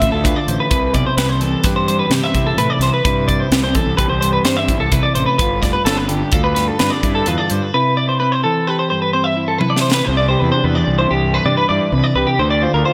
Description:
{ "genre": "math rock and midwest emo", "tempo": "128 BPM", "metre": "5/4", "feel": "straight", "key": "C major", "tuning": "A4 = 441 Hz", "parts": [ { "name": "mellow electric guitar", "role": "accompaniment", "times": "0.0-12.9 s", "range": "G2 to G4", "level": "-22 LUFS", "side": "equal", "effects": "none" }, { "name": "clean electric guitar", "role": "arpeggios", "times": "0.0-12.9 s", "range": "G4 to E5", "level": "-20 LUFS", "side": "equal", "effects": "lush chorus" }, { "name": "fuzz fingered electric bass", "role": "bass", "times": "0.0-12.8 s", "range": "F1 to C3", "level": "-22 LUFS", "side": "equal", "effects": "overdrive" }, { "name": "crisp fusion drum kit", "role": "drums", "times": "0.0-10.0 s", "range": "hi-hat, kick drum, snare drum, toms", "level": "-22 LUFS", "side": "equal", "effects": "gated reverb" } ], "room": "moderate plate reverb, RT60 2.3 s", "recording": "bright 1980s-style digital production", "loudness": "-16 LUFS", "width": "mono", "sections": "0.0-10.1 A section; 10.1-12.9 B section", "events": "drum fill 9.6-10.1", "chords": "0.0 Dm7; 0.7 Cmaj7; 5.4 G7; 7.7 Cmaj7; 10.1 Cmaj9; 12.4 Bbadd9/D", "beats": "0.25 | 0.72 1.18 1.65 2.12 2.58 | 3.05 3.52 3.99 4.46 4.92 | 5.39 5.86 6.33 6.79 7.26 | 7.73 8.19 8.66 9.13 9.59 | 10.06 10.52 10.99 11.45 11.92 | 12.38 12.85" }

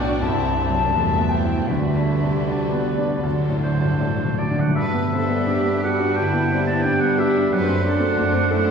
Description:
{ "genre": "classical", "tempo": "76-96 BPM", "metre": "4/4", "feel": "rubato", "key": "G major", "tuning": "A4 = 440 Hz", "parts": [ { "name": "clear grand piano", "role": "melody", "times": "0.0-8.7 s", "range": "B1 to A4", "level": "-22 LUFS", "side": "left 1 dB", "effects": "none" }, { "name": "warm chamber violin section", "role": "melody", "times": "0.0-8.7 s", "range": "A4 to E5", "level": "-36 LUFS", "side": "left 4 dB", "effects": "none" }, { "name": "mellow concert flute", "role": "second line", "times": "0.0-4.0 s", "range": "D5 to A5", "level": "-26 LUFS", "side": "left 5 dB", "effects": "none" }, { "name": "rich chamber violin section", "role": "second line", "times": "0.0-8.7 s", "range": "C4 to F#4", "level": "-32 LUFS", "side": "left 2 dB", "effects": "none" }, { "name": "rich chamber viola section", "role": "accompaniment", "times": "0.0-8.7 s", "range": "F#3 to D4", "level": "-28 LUFS", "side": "right 2 dB", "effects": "none" }, { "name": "clear chamber double bass section", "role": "bass", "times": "0.0-8.7 s", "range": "B1 to G2", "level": "-27 LUFS", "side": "right 1 dB", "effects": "none" }, { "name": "rich chamber cello section", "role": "bass", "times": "0.0-8.7 s", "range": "B2 to B4", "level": "-28 LUFS", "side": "right 2 dB", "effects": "none" }, { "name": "timpani", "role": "percussion", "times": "1.7-4.8 s", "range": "D3", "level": "-28 LUFS", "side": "left 2 dB", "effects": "none" }, { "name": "warm oboe", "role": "second line", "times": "3.6-8.7 s", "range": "C5 to A5", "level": "-25 LUFS", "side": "right 2 dB", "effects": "none" } ], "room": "wet scoring stage reverb, RT60 2.2 s", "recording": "heard from further back in the room", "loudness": "-18 LUFS", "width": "side -6 dB against mid", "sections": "0.0-4.8 A section; 4.8-8.7 B section", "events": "timpani fill 3.2-4.8", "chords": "0.2 Cmaj7; 1.7 G/D; 3.2 D; 4.8 G; 7.5 D7/F#", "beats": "0.24 0.93 | 1.69 2.47 3.25 4.01 | 4.79 5.51 6.20 6.86 | 7.54 8.20" }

